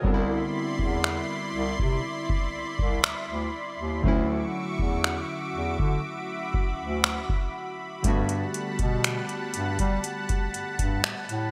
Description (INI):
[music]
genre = contemporary R&B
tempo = 60 BPM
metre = 4/4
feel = straight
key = G major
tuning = A4 = 441 Hz
[part]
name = warm analog keys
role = accompaniment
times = 0.0-11.5 s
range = D3 to A#4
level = -35 LUFS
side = equal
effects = chorus
[part]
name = lush unison pad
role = sustained chords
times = 0.0-11.5 s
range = G3 to D6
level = -35 LUFS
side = equal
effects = chorus
[part]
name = warm bass clarinet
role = bass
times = 0.0-11.5 s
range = C2 to G3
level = -32 LUFS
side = equal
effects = none
[part]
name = booming analog drum machine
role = drums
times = 0.0-11.5 s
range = finger snaps, hi-hat, kick drum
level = -29 LUFS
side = equal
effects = none
[sound]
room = light reverb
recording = bright 1980s-style digital production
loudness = -28 LUFS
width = mono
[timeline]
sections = 0.0-11.5 A section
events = break 0.0-8.0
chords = 0.0 Cmaj9; 4.0 Dmaj9; 8.0 Gmaj9